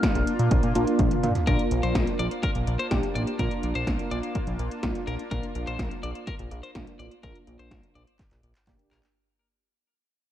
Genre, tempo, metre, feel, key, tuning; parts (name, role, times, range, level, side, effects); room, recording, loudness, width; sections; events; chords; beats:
synth-pop; 125 BPM; 4/4; straight; Bb major; A4 = 444 Hz
hollow clarinet-like synth lead; melody; 0.0-0.5 s; F6; -36 LUFS; left 1 dB; chorus, phaser, tape echo
funky polysynth comp; accompaniment; 0.0-9.1 s; Bb3 to G4; -30 LUFS; equal; chorus
lush unison pad; sustained chords; 0.0-9.1 s; Bb3 to F4; -33 LUFS; right 1 dB; chorus
80s electronic pad drums; drums; 0.0-9.1 s; handclaps, hi-hat, kick drum, snare drum, toms; -27 LUFS; equal; gated reverb on snare and toms
fat analog bass; bass; 0.2-9.0 s; A1 to Bb2; -28 LUFS; equal
twelve-string electric guitar; second line; 1.5-9.0 s; Bb4 to D5; -35 LUFS; left 4 dB; tape echo
light reverb, digital ambience; echo-heavy mix; -24 LUFS; side -11 dB against mid
0.0-1.5 A section; 1.5-9.2 B section
drum fill 1.0-1.5, 8.2-9.2; fade-out 1.5-9.2
0.0 Bb
0.03 0.51 0.99 | 1.47 1.95 2.43 2.91 | 3.39 3.87 4.35 4.83 | 5.31 5.79 6.27 6.75 | 7.23 7.71 8.19 8.67